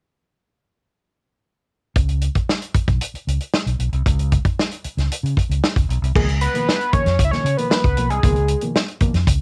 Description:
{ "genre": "funk", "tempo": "115 BPM", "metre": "4/4", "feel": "straight", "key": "unclear", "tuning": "A4 = 440 Hz", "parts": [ { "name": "fingered electric bass", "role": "bass", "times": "2.0-9.4 s", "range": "Cb2 to Db3", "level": "-22 LUFS", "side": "equal", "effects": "none" }, { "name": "warm soul drum kit", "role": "drums", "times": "2.0-9.4 s", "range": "crash cymbal, hi-hat, kick drum, snare drum", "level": "-22 LUFS", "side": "equal", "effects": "none" }, { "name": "fat analog lead", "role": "melody", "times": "6.2-8.6 s", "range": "Ab4 to Fb5", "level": "-24 LUFS", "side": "equal", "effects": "chorus, cassette tape" }, { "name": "reed electric piano", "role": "stabs", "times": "6.2-9.1 s", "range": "Cb3 to Bb3", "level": "-28 LUFS", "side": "equal", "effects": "cassette tape, tape echo" } ], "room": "little or no reverb", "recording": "home recording on cassette", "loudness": "-20 LUFS", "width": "mono", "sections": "2.0-6.1 A section; 6.1-9.4 B section", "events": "none", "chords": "2.0 Cbsus2; 6.1 Db13" }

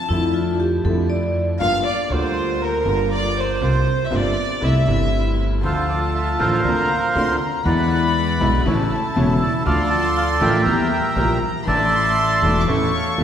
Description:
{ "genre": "tango", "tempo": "119 BPM", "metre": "4/4", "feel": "rubato", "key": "D minor from 5.6 s", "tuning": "A4 = 440 Hz", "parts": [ { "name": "warm chamber violin section", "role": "second line", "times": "0.0-13.2 s", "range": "Bb4 to D6", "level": "-24 LUFS", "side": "left 1 dB", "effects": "none" }, { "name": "vibraphone with hard mallets", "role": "second line", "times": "0.1-1.4 s", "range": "E4 to D5", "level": "-23 LUFS", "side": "equal", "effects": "none" }, { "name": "warm grand piano", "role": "accompaniment", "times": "0.1-13.2 s", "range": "E1 to A4", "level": "-22 LUFS", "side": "left 1 dB", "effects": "none" }, { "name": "dark studio string section", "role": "stabs", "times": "0.1-13.2 s", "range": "F3 to G4", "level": "-29 LUFS", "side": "right 2 dB", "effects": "none" }, { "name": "upright bass", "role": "bass", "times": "0.1-13.2 s", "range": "E1 to F2", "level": "-23 LUFS", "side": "right 1 dB", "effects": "none" }, { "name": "bandoneon", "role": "melody", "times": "5.6-13.2 s", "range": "E4 to A5", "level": "-20 LUFS", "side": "right 2 dB", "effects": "none" } ], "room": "wet scoring stage reverb, RT60 1.9 s", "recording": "heard from further back in the room", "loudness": "-17 LUFS", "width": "side -9 dB against mid", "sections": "0.0-5.6 A section; 5.6-13.2 B section", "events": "violin section solo 0.0-5.6", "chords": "0.0 Dmadd9/F; 1.6 Gm7; 3.6 C7sus4; 4.6 C6; 5.6 Dm; 6.6 Bbadd9/D; 7.7 E7; 8.7 A; 9.7 Dm; 10.7 Edim; 11.7 Asus4; 12.7 A" }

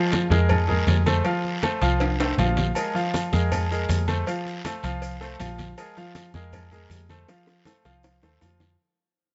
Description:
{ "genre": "latin, salsa", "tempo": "159 BPM", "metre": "4/4", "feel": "straight", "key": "unclear", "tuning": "A4 = 440 Hz", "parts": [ { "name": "clear concert grand piano", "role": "accompaniment", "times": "0.0-8.7 s", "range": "F3 to F5", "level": "-29 LUFS", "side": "equal", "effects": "none" }, { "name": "congas", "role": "percussion", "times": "0.1-8.8 s", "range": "none", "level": "-32 LUFS", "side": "equal", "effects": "none" }, { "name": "cowbell and bongos", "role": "percussion", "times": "0.1-8.8 s", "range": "none", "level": "-38 LUFS", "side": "equal", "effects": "none" }, { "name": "guiro", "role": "percussion", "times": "0.1-8.8 s", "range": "none", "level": "-39 LUFS", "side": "equal", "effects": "none" }, { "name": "timbales and agogo bells", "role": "percussion", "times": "0.1-8.6 s", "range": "none", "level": "-34 LUFS", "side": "equal", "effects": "none" }, { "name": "fingered electric bass", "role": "bass", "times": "0.3-8.8 s", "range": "Bb1 to F2", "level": "-26 LUFS", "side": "equal", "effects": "none" }, { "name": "maracas", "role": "percussion", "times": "2.8-8.8 s", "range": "none", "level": "-47 LUFS", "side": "equal", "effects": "none" } ], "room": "light reverb", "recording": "nothing above 7.8 kHz", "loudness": "-24 LUFS", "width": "mono", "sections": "0.0-8.8 A section", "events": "fade-out 0.0-8.8; drum fill 2.0-2.8, 7.3-8.8", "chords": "0.0 Bb5; 1.3 F; 2.8 Bb5; 4.3 F; 5.8 Bb5; 7.3 F" }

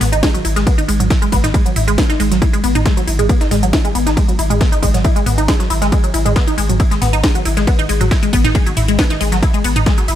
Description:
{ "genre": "driving peak-time techno", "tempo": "137 BPM", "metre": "4/4", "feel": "straight", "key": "G# minor", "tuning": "A4 = 440 Hz", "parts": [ { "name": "resonant blip pluck", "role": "riff", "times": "0.0-10.1 s", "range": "F#3 to E4", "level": "-18 LUFS", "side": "left 1 dB", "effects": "chorus, phaser, overdrive, sidechain pumping, tape echo" }, { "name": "saturated sub bass", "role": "bass", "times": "0.0-10.2 s", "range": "G#1", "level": "-19 LUFS", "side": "equal", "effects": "overdrive, sidechain pumping, low-pass filter" }, { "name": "breakbeat sampler-style drum kit", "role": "drums", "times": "0.0-10.2 s", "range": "hi-hat, ride cymbal, snare drum", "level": "-29 LUFS", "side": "right 1 dB", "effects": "high-pass filter on cymbals, high-pass filter on snare, high-pass filter on hats, high-pass filter on room" }, { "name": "techno drum kit", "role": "drums", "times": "0.0-10.2 s", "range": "hi-hat, ride cymbal, snare drum, toms", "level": "-21 LUFS", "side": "equal", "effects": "overdrive, sidechain pumping on hats, sidechain pumping on toms, sidechain pumping on cymbals" }, { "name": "electronic kick drum", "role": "drums", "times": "0.2-10.0 s", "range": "none", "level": "-15 LUFS", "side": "equal", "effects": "overdrive" } ], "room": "digital ambience", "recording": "none", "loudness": "-12 LUFS", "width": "side -11 dB against mid", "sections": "0.0-10.2 A section", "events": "none", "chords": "0.0 G#5" }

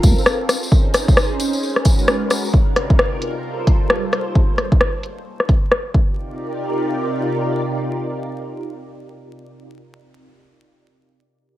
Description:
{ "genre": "UK garage, two-step garage", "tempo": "132 BPM", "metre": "4/4", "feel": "swing 61% on 16ths", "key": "C minor", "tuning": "A4 = 440 Hz", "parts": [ { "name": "soft string machine", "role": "sustained chords", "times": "0.0-9.4 s", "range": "C3 to D5", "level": "-23 LUFS", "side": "equal", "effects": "phaser, ensemble chorus, sidechain pumping" }, { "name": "electronic kick drum", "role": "drums", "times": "0.0-6.1 s", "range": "none", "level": "-15 LUFS", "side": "equal", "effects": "studio reverb" }, { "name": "garage drum kit", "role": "drums", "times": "0.0-5.8 s", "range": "hi-hat, rim click", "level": "-18 LUFS", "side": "left 1 dB", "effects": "low-pass filter on hats, studio reverb, low-pass filter on snare" }, { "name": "tambourine", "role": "percussion", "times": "0.0-2.5 s", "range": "none", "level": "-28 LUFS", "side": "left 2 dB", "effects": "none" } ], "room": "light reverb, digital ambience", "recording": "vinyl crackle", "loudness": "-16 LUFS", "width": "side -14 dB against mid", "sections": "0.0-6.2 A section; 6.2-9.8 B section", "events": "filter sweep on drum 0.0-6.2", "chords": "0.5 Abadd11/Db; 1.6 Abm11; 2.5 Cm11; 3.2 Gm11; 4.1 Bbm11; 5.3 N.C.; 5.9 Cm11" }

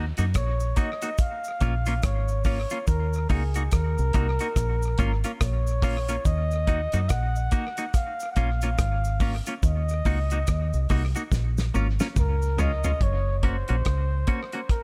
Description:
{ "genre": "roots reggae", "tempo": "71 BPM", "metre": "4/4", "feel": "swing 61% on 16ths", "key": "Eb dorian", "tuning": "A4 = 439 Hz", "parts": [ { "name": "clean electric guitar", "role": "accompaniment", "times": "0.0-14.6 s", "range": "Ab3 to Gb4", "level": "-35 LUFS", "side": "equal", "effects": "tape echo" }, { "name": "deep dub fingered electric bass", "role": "bass", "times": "0.0-14.2 s", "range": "Gb1 to Gb2", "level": "-27 LUFS", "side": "equal", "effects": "none" }, { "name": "damped 70s drum kit", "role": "drums", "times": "0.2-14.8 s", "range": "hi-hat, kick drum, rim click, snare drum, toms", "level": "-28 LUFS", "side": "equal", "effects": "none" }, { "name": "cabasa", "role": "percussion", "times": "0.2-13.0 s", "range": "none", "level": "-46 LUFS", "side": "equal", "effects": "none" }, { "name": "breathy flugelhorn", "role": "melody", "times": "0.4-14.8 s", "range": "Ab4 to Gb5", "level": "-34 LUFS", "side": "equal", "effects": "tape echo" } ], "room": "studio ambience", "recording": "echo-heavy mix", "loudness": "-25 LUFS", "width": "mono", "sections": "0.0-13.0 A section; 13.0-14.8 B section", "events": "drum fill 11.3-13.0", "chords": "0.0 Ebm; 1.2 Bbm; 2.9 Ebm; 4.6 Bbm; 6.3 Ebm; 7.9 Bbm; 9.6 Ebm; 11.3 Bbm; 12.2 Db; 13.0 Gb" }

